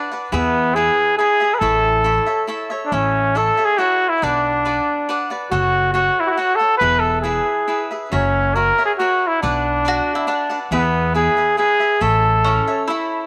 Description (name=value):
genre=mexican folk, mariachi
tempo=139 BPM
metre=3/4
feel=straight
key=A major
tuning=A4 = 438 Hz
part: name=warm trumpet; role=melody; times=0.0-12.9 s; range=B3 to B4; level=-19 LUFS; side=equal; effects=none
part: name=cavaquinho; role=accompaniment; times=0.0-13.3 s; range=D4 to F#5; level=-28 LUFS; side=equal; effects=none
part: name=upright bass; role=bass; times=0.3-12.6 s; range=E1 to E2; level=-25 LUFS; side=equal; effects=none
part: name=mandolin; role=second line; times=9.9-13.3 s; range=C#4 to F#4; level=-26 LUFS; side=equal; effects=none
room=moderate plate reverb, RT60 2.8 s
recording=none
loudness=-18 LUFS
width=mono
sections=0.0-2.9 A section; 2.9-13.3 A section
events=none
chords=0.3 E; 1.6 A; 4.2 Bm; 5.5 F#m; 6.8 E; 8.1 F#7; 9.4 Bm; 10.7 E; 12.0 A